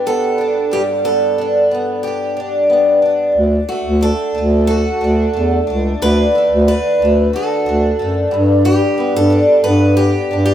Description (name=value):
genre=pop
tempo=91 BPM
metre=4/4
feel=straight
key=D major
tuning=A4 = 441 Hz
part: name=picked steel-string acoustic guitar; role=melody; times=0.0-10.5 s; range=F#4 to B4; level=-19 LUFS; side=equal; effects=none
part: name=picked twelve-string acoustic guitar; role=accompaniment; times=0.0-10.5 s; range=G2 to G4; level=-16 LUFS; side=equal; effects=double-tracked left and right
part: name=dark bass clarinet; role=bass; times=3.4-10.5 s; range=C#2 to G2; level=-14 LUFS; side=equal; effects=none
room=moderate lush hall reverb, RT60 2.6 s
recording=rough home demo mix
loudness=-12 LUFS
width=side -10 dB against mid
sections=0.0-10.5 A section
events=none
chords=0.0 G; 3.4 D; 8.3 G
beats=0.05 | 0.71 1.37 2.03 2.69 | 3.36 4.02 4.68 5.34 | 6.00 6.67 7.33 7.99 | 8.65 9.32 9.98